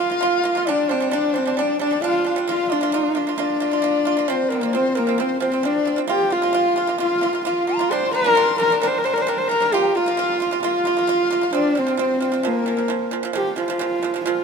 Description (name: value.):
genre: mongolian traditional, Mongolian folk.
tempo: 132 BPM.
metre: 4/4.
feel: straight.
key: Bb gong mode.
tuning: A4 = 440 Hz.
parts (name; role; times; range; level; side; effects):
warm horsehead fiddle; melody; 0.0-14.4 s; Bb3 to C5; -20 LUFS; left 1 dB; none.
reedy dizi; second line; 0.0-13.1 s; Bb4 to C6; -25 LUFS; left 6 dB; none.
pipa; arpeggios; 0.0-14.4 s; Bb2 to F4; -24 LUFS; right 8 dB; none.
room: moderate huge ambient reverb, RT60 4.6 s.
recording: minimal, uncompressed stereo recording.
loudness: -18 LUFS.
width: side -6 dB against mid.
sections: 0.0-13.4 A section; 13.4-14.4 A section.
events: none.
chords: 0.0 Bb5; 0.7 G5; 2.5 Bb5; 4.3 F5; 6.1 Bb5; 7.9 G5; 9.7 Bb5; 11.5 F5; 12.4 Bb5.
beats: 0.21 | 0.66 1.12 1.57 2.02 | 2.47 2.93 3.38 3.83 | 4.28 4.74 5.19 5.64 | 6.09 6.55 7.00 7.45 | 7.91 8.36 8.81 9.27 | 9.72 10.18 10.63 11.08 | 11.54 11.99 12.45 12.90 | 13.35 13.81 14.26.